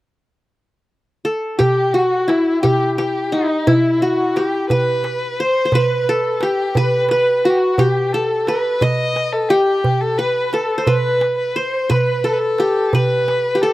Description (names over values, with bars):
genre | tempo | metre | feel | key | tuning
Arabic maqam ensemble | 58 BPM (dotted quarters) | 6/8 | straight | unclear | A4 = 440 Hz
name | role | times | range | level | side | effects
qanun | melody | 1.2-13.7 s | D#4 to D#5 | -17 LUFS | equal | none
rich violin | second line | 1.6-13.7 s | D#4 to D#5 | -21 LUFS | left 3 dB | none
darbuka | percussion | 1.6-13.4 s | none | -21 LUFS | right 2 dB | none
room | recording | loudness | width
little or no reverb | recorded outdoors, with no room sound | -15 LUFS | side -16 dB against mid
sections
0.0-1.6 A section; 1.6-13.7 B section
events
none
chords
none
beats
0.56 | 1.59 2.63 | 3.66 4.70 | 5.73 6.76 | 7.79 8.82 | 9.85 10.88 | 11.91 12.94